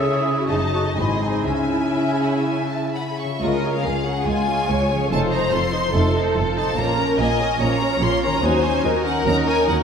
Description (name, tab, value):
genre	classical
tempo	121-147 BPM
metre	4/4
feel	rubato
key	C# minor, Db major from 3.4 s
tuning	A4 = 440 Hz
part	clear symphonic violin section	melody	0.0-9.8 s	Eb5 to C#6	-26 LUFS	left 2 dB	none
part	clear clarinet	second line	0.0-2.9 s	C#4 to G#4	-24 LUFS	equal	none
part	warm symphonic violin section	second line	0.0-9.8 s	F4 to A5	-24 LUFS	left 2 dB	none
part	rich studio viola section	accompaniment	0.0-9.8 s	Ab3 to C5	-26 LUFS	right 1 dB	none
part	concert harp	arpeggios	0.0-9.8 s	F#2 to D#5	-29 LUFS	left 5 dB	none
part	clear symphonic cello section	bass	0.0-9.8 s	Db2 to C#3	-27 LUFS	right 2 dB	none
part	clear symphonic double bass section	bass	0.5-9.8 s	F1 to Eb2	-26 LUFS	right 3 dB	none
part	mellow French horn section	sustained chords	3.4-9.4 s	F3 to F4	-28 LUFS	left 1 dB	none
room	wet scoring stage reverb, RT60 1.9 s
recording	none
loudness	-18 LUFS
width	side -7 dB against mid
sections	0.0-3.4 A section; 3.4-9.8 B section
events	none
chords	0.0 C#m; 0.5 D#dim/F#; 1.0 G#; 1.5 C#m; 3.4 Db; 5.1 F7; 6.8 Bbm; 8.4 Ebm7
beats	0.04 0.50 0.97 | 1.46 1.96 2.45 2.94 | 3.42 3.85 4.27 4.69 | 5.11 5.53 5.94 6.36 | 6.78 7.19 7.60 8.02 | 8.43 8.85 9.26 9.68